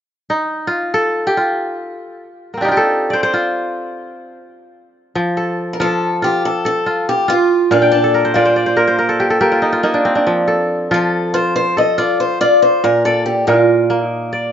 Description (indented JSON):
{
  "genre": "west african traditional",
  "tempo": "94 BPM (dotted quarters)",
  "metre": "12/8",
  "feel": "straight",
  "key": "F mixolydian",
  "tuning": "A4 = 440 Hz",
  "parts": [
    { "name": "kora", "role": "arpeggios", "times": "0.3-14.5 s", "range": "Bb2 to A5", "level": "-15 LUFS", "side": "equal", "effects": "none" },
    { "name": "picked old ladder-braced acoustic guitar", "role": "melody", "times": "5.7-14.3 s", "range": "D4 to Eb5", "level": "-16 LUFS", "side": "equal", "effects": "none" }
  ],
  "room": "small room reverb",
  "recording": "rough home demo mix, nothing above 7.6 kHz",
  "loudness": "-13 LUFS",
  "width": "side -8 dB against mid",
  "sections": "0.0-5.2 A section; 5.2-14.5 B section",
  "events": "kora solo 0.0-5.2; kora fill 7.7-10.3",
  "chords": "0.0 F5; 5.2 F; 7.7 N.C.; 10.3 F; 12.8 Bb",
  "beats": "| 0.03 0.67 1.31 1.95 | 2.59 3.23 3.87 4.51 | 5.16 5.79 6.43 7.08 | 7.71 8.36 9.00 9.64 | 10.28 10.92 11.56 12.20 | 12.84 13.48 14.12"
}